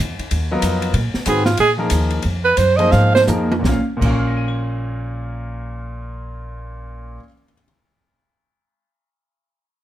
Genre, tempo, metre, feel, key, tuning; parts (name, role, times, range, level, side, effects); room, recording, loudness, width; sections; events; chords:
modal jazz; 160-189 BPM; 4/4; swing 63% on 8ths; Bb minor; A4 = 440 Hz
upright bass; bass; 0.0-7.2 s; Bb1 to Bb2; -21 LUFS; equal
open jazz drum kit; drums; 0.2-4.2 s; crash cymbal, hi-hat, kick drum, ride cymbal, snare drum, toms; -24 LUFS; equal
clear baby grand piano; accompaniment; 0.5-7.6 s; Bb2 to Ab7; -22 LUFS; left 1 dB
breathy alto saxophone; second line; 1.3-3.2 s; F4 to F5; -15 LUFS; right 4 dB
light reverb; close, detailed microphones; -15 LUFS; side -13 dB against mid
0.0-3.6 A section; 3.6-6.6 B section
alto saxophone solo 0.0-3.6; slowing down 0.9-3.6; drum fill 2.9-3.6
0.0 Bb9sus4; 3.6 Bbm